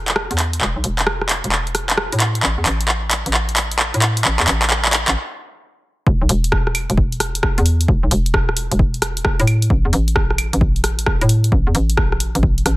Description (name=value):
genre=UK garage, two-step garage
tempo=132 BPM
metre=4/4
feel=swing 66% on 16ths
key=unclear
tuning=A4 = 440 Hz
part: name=hollow knocking FM bass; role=bass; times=0.0-12.8 s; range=E1 to A2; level=-19 LUFS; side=equal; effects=sidechain pumping
part: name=punchy analog drum machine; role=drums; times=0.1-12.8 s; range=claves, handclaps, hi-hat, rim click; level=-18 LUFS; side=equal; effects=none
part: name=electronic kick drum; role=drums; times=6.1-12.5 s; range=none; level=-18 LUFS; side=equal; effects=none
room=little or no reverb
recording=none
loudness=-15 LUFS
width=side -19 dB against mid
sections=0.0-6.1 A section; 6.1-12.8 B section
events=build-up 0.0-6.1; drum fill 0.0-5.2; stop 5.2-6.1; drop 6.1-12.8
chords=none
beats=0.16 | 0.61 1.07 1.52 1.98 | 2.43 2.88 3.34 3.79 | 4.25 4.70 5.16 5.61 | 6.07 6.52 6.97 7.43 | 7.88 8.34 8.79 9.25 | 9.70 10.16 10.61 11.07 | 11.52 11.97 12.43